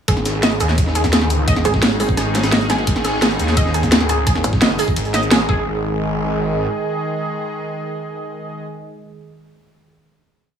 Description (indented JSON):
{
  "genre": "dark technical drum and bass",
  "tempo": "172 BPM",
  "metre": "4/4",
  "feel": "straight",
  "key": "unclear",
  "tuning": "A4 = 444 Hz",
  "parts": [
    { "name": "sweeping resonant pad", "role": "sustained chords", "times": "0.1-8.6 s", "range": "G#2 to D#5", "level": "-23 LUFS", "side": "equal", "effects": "chorus, sidechain pumping" },
    { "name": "warbly dusty pluck", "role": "arpeggios", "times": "0.1-5.8 s", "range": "G#4 to D#5", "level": "-23 LUFS", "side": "right 2 dB", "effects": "chorus, sidechain pumping, dub echo" },
    { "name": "snarling distorted saw bass", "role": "bass", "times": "0.1-6.7 s", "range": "F#1 to D#2", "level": "-21 LUFS", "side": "equal", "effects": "distortion, overdrive, sidechain pumping" },
    { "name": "breakbeat sampler-style drum kit", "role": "drums", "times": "0.1-5.4 s", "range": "hi-hat, snare drum", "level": "-25 LUFS", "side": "equal", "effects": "high-pass filter on hats, small room reverb, high-pass filter on snare, high-pass filter on room" },
    { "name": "drum and bass drum kit", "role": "drums", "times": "0.1-5.4 s", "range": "hi-hat, shaker, snare drum", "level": "-18 LUFS", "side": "equal", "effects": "overdrive, small room reverb" },
    { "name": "electronic kick drum", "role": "drums", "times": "0.1-5.6 s", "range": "none", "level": "-20 LUFS", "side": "equal", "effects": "small room reverb" },
    { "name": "pulsing pluck wobble bass", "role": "bass", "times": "1.6-4.6 s", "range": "G#1", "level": "-21 LUFS", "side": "equal", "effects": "chorus" }
  ],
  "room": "light reverb, digital ambience",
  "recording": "small room ambience",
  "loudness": "-15 LUFS",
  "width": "side -8 dB against mid",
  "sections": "0.1-5.7 drop; 5.7-8.5 final hit",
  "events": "drop 0.1-5.7",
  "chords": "0.1 G#5"
}